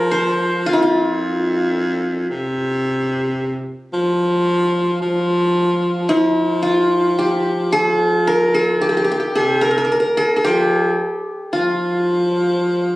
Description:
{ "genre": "Arabic maqam ensemble", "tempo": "111 BPM (eighths)", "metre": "10/8", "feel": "straight", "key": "F maqam rast", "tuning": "A4 = 443 Hz", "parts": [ { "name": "qanun", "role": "melody", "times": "0.0-12.9 s", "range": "E4-50c to C5", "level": "-17 LUFS", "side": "equal", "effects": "none" }, { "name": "clear baritone saxophone", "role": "bass", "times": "0.0-13.0 s", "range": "F2 to F3", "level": "-18 LUFS", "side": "equal", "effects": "none" } ], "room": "moderate recital hall reverb, RT60 1.4 s", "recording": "recorded on a phone in the room, club reverb, lossy compression artefacts", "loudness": "-15 LUFS", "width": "side -18 dB against mid", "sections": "0.0-6.1 A section; 6.1-13.0 B section", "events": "none", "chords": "none" }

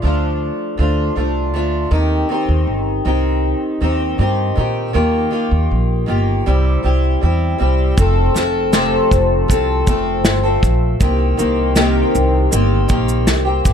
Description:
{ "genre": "acoustic pop", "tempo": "79 BPM", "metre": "4/4", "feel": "straight", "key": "F mixolydian", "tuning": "A4 = 440 Hz", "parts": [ { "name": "fingerpicked acoustic archtop guitar", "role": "accompaniment", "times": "0.0-13.7 s", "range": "F2 to A4", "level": "-17 LUFS", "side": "left 1 dB", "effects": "double-tracked left and right" }, { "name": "upright bass", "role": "bass", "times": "0.0-13.7 s", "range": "F1 to Bb2", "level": "-17 LUFS", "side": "equal", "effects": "none" }, { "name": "unplugged drum kit", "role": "drums", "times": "8.0-13.7 s", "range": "kick drum, shaker, snare drum", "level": "-16 LUFS", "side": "equal", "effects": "none" } ], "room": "little or no reverb", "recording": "dark, warm production", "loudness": "-14 LUFS", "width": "side -8 dB against mid", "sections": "0.0-8.0 A section; 8.0-13.7 B section", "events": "none", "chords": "0.0 Dm; 1.9 Cm; 4.9 Ebadd9; 6.5 C; 8.0 F; 11.0 Cm7" }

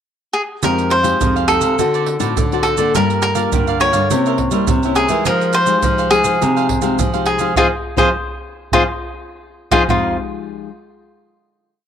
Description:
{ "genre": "samba and choro", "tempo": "104 BPM", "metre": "4/4", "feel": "straight", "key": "F minor", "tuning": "A4 = 439 Hz", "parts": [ { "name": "cavaquinho", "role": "melody", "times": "0.3-10.2 s", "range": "F4 to Db5", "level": "-17 LUFS", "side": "left 1 dB", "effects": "none" }, { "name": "cavaquinho", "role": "accompaniment", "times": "0.6-10.1 s", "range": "Eb4 to F5", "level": "-25 LUFS", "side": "right 11 dB", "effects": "none" }, { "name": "nylon-string guitar", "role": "accompaniment", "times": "0.6-10.7 s", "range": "A2 to A4", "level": "-23 LUFS", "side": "left 14 dB", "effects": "none" }, { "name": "nylon-string guitar", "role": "bass", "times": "0.6-10.2 s", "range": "F2 to G3", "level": "-20 LUFS", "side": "equal", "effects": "none" }, { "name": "maracas, surdo and pandeiro", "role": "percussion", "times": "0.6-10.0 s", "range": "none", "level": "-22 LUFS", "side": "right 3 dB", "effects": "none" } ], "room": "moderate spring reverb, RT60 1.9 s, small room ambience", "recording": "1960s-style stereo with parts hard left and right", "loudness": "-14 LUFS", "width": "side -8 dB against mid", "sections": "0.0-0.6 pickup bar; 0.6-9.9 A section; 9.9-11.9 final chord", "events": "band accent 7.6-9.9", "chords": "0.0 N.C.; 0.6 Fm9; 1.8 D7b9; 2.9 Gm9; 4.1 C7b9; 5.3 Fm9" }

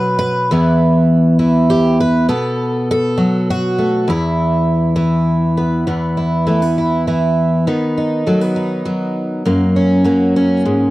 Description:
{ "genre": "folk, solo fingerstyle acoustic guitar", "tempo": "101 BPM", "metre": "3/4", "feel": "straight", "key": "unclear", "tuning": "A4 = 440 Hz", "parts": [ { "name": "picked twelve-string acoustic guitar", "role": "solo", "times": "0.0-10.9 s", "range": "E2 to B4", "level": "-13 LUFS", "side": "equal", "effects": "none" } ], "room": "moderate booth ambience, RT60 0.2 s", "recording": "dry, close 1970s-style studio recording", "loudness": "-13 LUFS", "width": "side -17 dB against mid", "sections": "0.0-5.9 A section; 5.9-10.9 B section", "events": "none", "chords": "0.5 E5; 2.3 B5; 4.1 E5; 7.7 B/D#; 9.5 F#" }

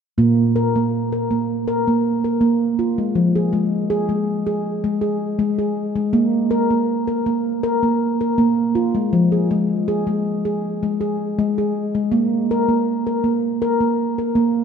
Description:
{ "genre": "world meditative, meditative tuned percussion", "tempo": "80 BPM", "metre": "4/4", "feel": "straight", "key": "unclear", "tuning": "A4 = 440 Hz", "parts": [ { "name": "handpan", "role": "solo", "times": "0.2-14.6 s", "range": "Bb2 to Bb4", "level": "-17 LUFS", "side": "equal", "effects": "none" } ], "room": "wet plate reverb, RT60 3.4 s", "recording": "dreamy mix soaked in reverb", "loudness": "-17 LUFS", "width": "side -7 dB against mid", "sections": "0.2-14.6 A section", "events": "none", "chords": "0.2 Bb5; 3.2 Fm; 6.1 Bb5; 9.1 Fm; 12.1 Bb5" }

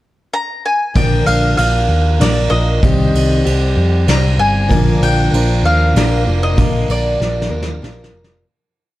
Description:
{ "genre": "folk rock and heartland rock", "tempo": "96 BPM", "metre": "3/4", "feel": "straight", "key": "unclear", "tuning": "A4 = 441 Hz", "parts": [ { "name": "mandolin", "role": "melody", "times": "0.3-7.5 s", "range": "D5 to Bb5", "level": "-19 LUFS", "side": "left 1 dB", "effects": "none" }, { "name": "picked plugged-in twelve-string acoustic guitar", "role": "accompaniment", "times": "0.9-8.5 s", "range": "Bb2 to Bb4", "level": "-19 LUFS", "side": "left 2 dB", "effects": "none" }, { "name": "tonewheel organ", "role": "sustained chords", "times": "0.9-8.4 s", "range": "F4 to F5", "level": "-30 LUFS", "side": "right 4 dB", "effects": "none" }, { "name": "hollow-body short-scale fingered electric bass", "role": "bass", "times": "1.0-8.4 s", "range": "F1 to F2", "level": "-15 LUFS", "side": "equal", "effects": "none" }, { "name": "soft brush drum kit", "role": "drums", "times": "1.0-8.4 s", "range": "kick drum, ride cymbal, snare drum", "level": "-19 LUFS", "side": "equal", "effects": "none" }, { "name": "bright reed electric piano", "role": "accompaniment", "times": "4.7-8.4 s", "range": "F4 to D6", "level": "-28 LUFS", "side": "right 6 dB", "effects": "none" } ], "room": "light reverb", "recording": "dark, warm production", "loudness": "-12 LUFS", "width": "side -16 dB against mid", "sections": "0.0-1.0 pickup bar; 1.0-8.4 pre-chorus", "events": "fade-out 6.6-8.4; drum fill 7.2-8.4", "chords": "0.0 N.C.; 1.0 Bb; 2.8 Cmadd9; 4.7 Bb" }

